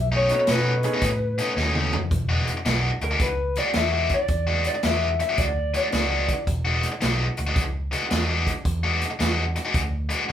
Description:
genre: electric blues shuffle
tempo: 110 BPM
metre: 4/4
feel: swing 66% on 8ths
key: E mixolydian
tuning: A4 = 440 Hz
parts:
  - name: electric guitar through a small old amp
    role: melody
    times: 0.0-6.4 s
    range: A#4 to E5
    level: -25 LUFS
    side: left 2 dB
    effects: none
  - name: vintage muted fingered electric bass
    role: bass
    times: 0.0-10.3 s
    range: E1 to B2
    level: -26 LUFS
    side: equal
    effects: none
  - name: overdriven electric guitar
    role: riff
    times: 0.1-10.3 s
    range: B2 to F#4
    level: -25 LUFS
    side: left 2 dB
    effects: none
  - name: clear baby grand piano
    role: accompaniment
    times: 0.3-1.0 s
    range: A3 to G#4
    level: -30 LUFS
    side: right 5 dB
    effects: none
  - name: swinging big-band drum kit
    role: drums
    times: 0.3-10.3 s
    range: hi-hat, kick drum, snare drum, toms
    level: -27 LUFS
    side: equal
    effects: none
room: moderate studio reverb, RT60 0.6 s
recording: band playing live in one room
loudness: -21 LUFS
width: side -10 dB against mid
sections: 0.0-2.1 A section; 2.1-10.3 B section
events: clean electric guitar solo 0.0-2.1; drum fill 1.6-2.1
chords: 0.0 B9; 2.1 E9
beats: 0.48 1.02 1.57 | 2.11 2.66 3.20 3.75 | 4.29 4.84 5.38 5.93 | 6.47 7.02 7.57 8.11 | 8.66 9.20 9.75 10.29

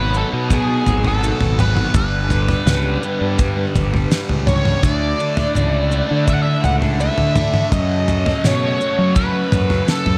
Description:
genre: psychedelic rock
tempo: 83 BPM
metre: 4/4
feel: straight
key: unclear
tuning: A4 = 439 Hz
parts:
  - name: bluesy overdriven lead guitar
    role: melody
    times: 0.0-10.2 s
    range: G#4 to F#5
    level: -24 LUFS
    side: equal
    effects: wah, distortion, analog delay
  - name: rich studio string section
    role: sustained chords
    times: 0.0-10.2 s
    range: A3 to B4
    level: -32 LUFS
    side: equal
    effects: none
  - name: thick fuzz guitar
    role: riff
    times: 0.0-10.2 s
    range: F#2 to D4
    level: -25 LUFS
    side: equal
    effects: distortion, phaser
  - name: fuzz fingered electric bass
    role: bass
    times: 0.0-10.2 s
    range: G1 to F#3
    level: -22 LUFS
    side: equal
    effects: overdrive
  - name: maracas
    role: percussion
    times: 0.1-10.0 s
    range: none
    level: -38 LUFS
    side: equal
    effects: analog delay
  - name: damped 70s drum kit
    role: drums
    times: 0.5-10.2 s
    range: kick drum, snare drum, toms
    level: -21 LUFS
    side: equal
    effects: none
room: light reverb, studio ambience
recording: echo-heavy mix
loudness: -17 LUFS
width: mono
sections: 0.0-10.2 A section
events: none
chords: 0.0 B; 2.0 G; 4.8 Dsus2; 7.7 F#m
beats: 0.52 1.24 | 1.96 2.68 3.40 4.12 | 4.84 5.56 6.28 7.00 | 7.72 8.44 9.16 9.88

